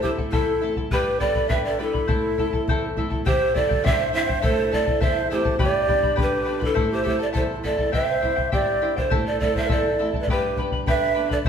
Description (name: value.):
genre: andean folk, Andean ensemble.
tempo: 102 BPM.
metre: 2/4.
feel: straight.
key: A minor.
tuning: A4 = 440 Hz.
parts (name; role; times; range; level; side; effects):
breathy mellow large pan pipes; melody; 0.0-11.5 s; A4 to E5; -23 LUFS; right 1 dB; none.
breathy bright large quena; second line; 0.0-11.5 s; E4 to E5; -28 LUFS; right 3 dB; none.
charango; accompaniment; 0.0-11.5 s; E4 to B5; -30 LUFS; left 3 dB; none.
flamenco guitar; accompaniment; 0.0-11.5 s; E2 to E4; -30 LUFS; right 1 dB; none.
bombo; percussion; 0.0-11.5 s; none; -26 LUFS; left 2 dB; none.
room: wet stone room reverb, RT60 1.2 s.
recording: band playing live in one room.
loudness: -20 LUFS.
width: side -7 dB against mid.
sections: 0.0-3.3 A section; 3.3-11.5 A section.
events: none.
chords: 0.0 Am; 0.9 G; 2.1 Am; 3.3 C; 4.4 Am; 5.6 G; 6.8 Am; 7.9 C; 9.1 Am; 10.3 G.